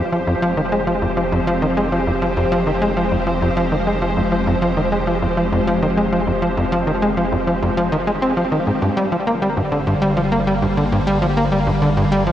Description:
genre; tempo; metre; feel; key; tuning
ambient, sequencer-driven space music; 100 BPM; 4/4; straight; F dorian; A4 = 440 Hz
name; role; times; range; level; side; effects
evolving wavetable pad; sustained chords; 0.0-12.3 s; D3 to C5; -20 LUFS; equal; ensemble chorus, built-in reverb
warm sub bass; bass; 0.0-12.3 s; F1 to G1; -28 LUFS; equal; none
bubbling stepped-filter texture; texture; 0.0-12.3 s; F5; -40 LUFS; right 2 dB; none
tight sequencer bass; riff; 0.1-12.3 s; F2 to C4; -18 LUFS; equal; cassette tape, analog delay
room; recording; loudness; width
wet plate reverb, RT60 2.7 s; worn, warbling old tape, cassette tape, warbly pitch drift, nothing above 10.6 kHz; -16 LUFS; side -11 dB against mid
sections
0.0-12.3 A section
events
none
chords
0.0 Fmadd9; 8.8 Gm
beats
0.42 1.02 | 1.62 2.22 2.82 3.42 | 4.02 4.62 5.22 5.82 | 6.42 7.02 7.62 8.22 | 8.82 9.42 10.02 10.62 | 11.22 11.82

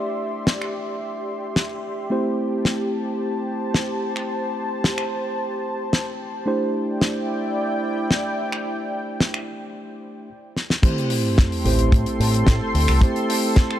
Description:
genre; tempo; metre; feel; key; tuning
nu-disco, nu disco; 110 BPM; 4/4; straight; A minor; A4 = 440 Hz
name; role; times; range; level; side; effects
mellow tine electric piano; accompaniment; 0.0-13.8 s; A3 to C5; -26 LUFS; right 1 dB; sidechain pumping, tape echo
lush unison pad; sustained chords; 0.0-13.8 s; E4 to C6; -27 LUFS; equal; chorus, sidechain pumping
damped 70s drum kit; drums; 0.5-13.8 s; crash cymbal, finger snaps, hi-hat, snare drum; -23 LUFS; left 1 dB; none
kick drum; drums; 10.8-13.7 s; none; -15 LUFS; equal; none
sub drop; sound effects; 10.8-13.0 s; none; -28 LUFS; equal; none
fingered electric bass with an envelope filter; bass; 11.7-13.0 s; A1 to A2; -20 LUFS; equal; sidechain pumping
room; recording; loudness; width
light reverb, small room ambience; none; -20 LUFS; side -12 dB against mid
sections
0.0-10.8 A section; 10.8-13.8 B section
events
filter sweep on analog synth pad 0.0-10.8; drum fill 10.6; drop 10.8-13.8; impact 10.8-13.0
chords
0.0 D9sus4; 2.1 Am7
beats
0.47 1.02 1.56 | 2.11 2.65 3.20 3.74 | 4.29 4.83 5.38 5.93 | 6.47 7.02 7.56 8.11 | 8.65 9.20 9.74 10.29 | 10.84 11.38 11.93 12.47 | 13.02 13.56

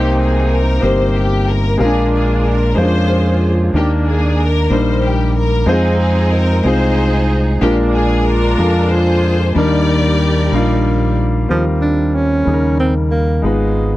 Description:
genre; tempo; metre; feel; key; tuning
gospel; 62 BPM (dotted quarters); 6/8; straight; Eb major; A4 = 439 Hz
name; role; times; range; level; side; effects
clear studio string section; melody; 0.0-11.2 s; Bb3 to D5; -20 LUFS; equal; none
clear grand piano; accompaniment; 0.0-14.0 s; Ab2 to G5; -17 LUFS; left 1 dB; none
fingered electric bass; bass; 0.0-14.0 s; G1 to F2; -15 LUFS; equal; none
breathy alto saxophone; melody; 11.5-14.0 s; F3 to D4; -17 LUFS; right 2 dB; none
room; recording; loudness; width
little or no reverb; dry, close 1970s-style studio recording; -12 LUFS; side -16 dB against mid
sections
0.0-11.5 A section; 11.5-14.0 B section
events
none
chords
0.0 Cm7; 1.8 Bb7; 3.7 Ebmaj7; 5.7 Fm7; 7.6 Bb7; 9.6 Ebmaj7; 11.5 Eb69; 12.5 Eb7; 13.4 Abm6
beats
0.83 | 1.80 2.77 | 3.74 4.71 | 5.68 6.65 | 7.62 8.59 | 9.56 10.53 | 11.50 12.47 | 13.44

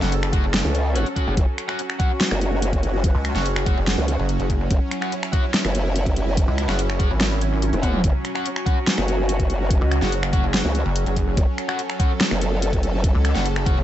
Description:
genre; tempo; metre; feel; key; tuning
heavy wobble dubstep; 144 BPM; 4/4; half-time; F# minor; A4 = 440 Hz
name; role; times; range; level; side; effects
supersaw pad; sustained chords; 0.0-13.8 s; F#3 to A4; -27 LUFS; right 1 dB; phaser, sidechain pumping
distorted electric guitar; stabs; 0.0-13.8 s; C#4 to F#5; -31 LUFS; left 1 dB; distortion, digital delay
pulsing pluck wobble bass; bass; 0.0-13.8 s; F#1 to C#2; -22 LUFS; equal; chorus, overdrive
dubstep drum kit; drums; 0.0-13.8 s; finger snaps, hi-hat, snare drum, toms; -25 LUFS; equal; overdrive
electronic kick drum; drums; 0.3-13.8 s; none; -20 LUFS; equal; overdrive
growl bass; bass; 0.6-13.1 s; E1 to C#2; -22 LUFS; equal; chorus, overdrive
room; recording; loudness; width
digital ambience; nothing above 8.0 kHz; -19 LUFS; side -12 dB against mid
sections
0.0-13.8 A section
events
drum fill 7.6-8.0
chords
0.0 F#5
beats
0.12 0.54 0.96 | 1.37 1.79 2.21 2.62 | 3.04 3.46 3.87 4.29 | 4.71 5.12 5.54 5.96 | 6.37 6.79 7.21 7.62 | 8.04 8.46 8.87 9.29 | 9.71 10.12 10.54 10.96 | 11.37 11.79 12.21 12.62 | 13.04 13.46

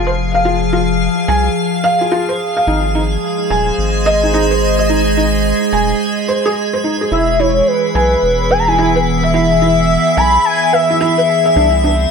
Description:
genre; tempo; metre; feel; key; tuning
IDM; 108 BPM; 4/4; swing 62% on 16ths; unclear; A4 = 440 Hz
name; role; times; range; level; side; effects
icy glass pad; sustained chords; 0.0-12.1 s; C3 to F5; -15 LUFS; equal; chorus, built-in reverb
round analog bass; bass; 0.0-12.1 s; Eb1 to C2; -18 LUFS; equal; none
felt-muted upright piano; arpeggios; 0.1-11.9 s; D4 to Ab5; -18 LUFS; right 1 dB; ping-pong delay
warm velvety synth lead; melody; 7.1-11.3 s; B4 to B5; -14 LUFS; equal; chorus, digital delay
room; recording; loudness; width
moderate echo chamber reverb, RT60 1.9 s; none; -11 LUFS; side -6 dB against mid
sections
0.0-12.1 A section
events
none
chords
0.0 Fm; 2.7 Ab; 7.1 E; 11.6 Cadd9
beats
| 0.45 1.00 1.56 2.12 | 2.67 3.23 3.78 4.34 | 4.89 5.45 6.00 6.56 | 7.12 7.67 8.23 8.78 | 9.34 9.89 10.45 11.01 | 11.56

